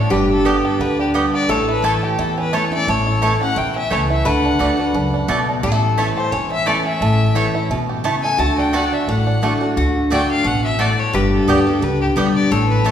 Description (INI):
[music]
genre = bluegrass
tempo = 174 BPM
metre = 4/4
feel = swing 54% on 8ths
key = D major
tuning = A4 = 436 Hz
[part]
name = bluegrass banjo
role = melody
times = 0.0-9.8 s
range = G3 to G4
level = -25 LUFS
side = right 3 dB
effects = none
[part]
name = clear fiddle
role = melody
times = 0.0-12.9 s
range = G4 to A5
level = -22 LUFS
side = left 3 dB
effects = none
[part]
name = lap resonator guitar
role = second line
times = 0.0-12.9 s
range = F#4 to B4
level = -24 LUFS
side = left 2 dB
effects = none
[part]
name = picked steel-string acoustic guitar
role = accompaniment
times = 0.0-12.9 s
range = E2 to G4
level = -19 LUFS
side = left 1 dB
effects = none
[part]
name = upright bass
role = bass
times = 0.0-12.9 s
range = E1 to E2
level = -23 LUFS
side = equal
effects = none
[part]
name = mandolin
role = stabs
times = 0.5-12.9 s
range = A3 to A5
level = -24 LUFS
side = right 3 dB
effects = none
[sound]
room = wet recital hall reverb, RT60 1.8 s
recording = recorded in a church or concert hall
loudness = -15 LUFS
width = side -9 dB against mid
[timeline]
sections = 0.0-9.8 A section; 9.8-12.9 A section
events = none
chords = 0.1 G; 1.5 A; 4.3 D; 5.6 A; 8.4 D; 11.1 G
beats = | 0.11 0.46 0.80 1.15 | 1.50 1.84 2.19 2.53 | 2.88 3.22 3.57 3.91 | 4.26 4.60 4.95 5.29 | 5.64 5.98 6.33 6.67 | 7.01 7.36 7.70 8.05 | 8.39 8.73 9.08 9.42 | 9.77 10.11 10.45 10.80 | 11.14 11.48 11.83 12.17 | 12.51 12.85